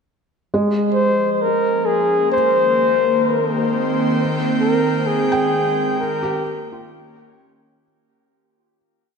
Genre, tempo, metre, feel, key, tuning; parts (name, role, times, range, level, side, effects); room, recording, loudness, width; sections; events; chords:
ambient; 65 BPM; 4/4; straight; Bb dorian; A4 = 436 Hz
airy breathy pad; sustained chords; 1.3-7.8 s; Eb3 to Ab5; -21 LUFS; right 2 dB; chorus
felt-muted upright piano; arpeggios; 0.5-9.2 s; Ab3 to G5; -24 LUFS; right 1 dB; ping-pong delay
mellow flugelhorn; melody; 0.9-6.9 s; Ab4 to C5; -18 LUFS; left 2 dB; ping-pong delay
wet lush hall reverb, RT60 2.7 s; dreamy mix soaked in reverb; -16 LUFS; side -5 dB against mid
0.5-7.8 A section
fade-in on analog synth pad 0.5-7.8; fade-out 4.2-7.8
0.5 Bbm7; 2.3 Cm7; 6.0 Eb7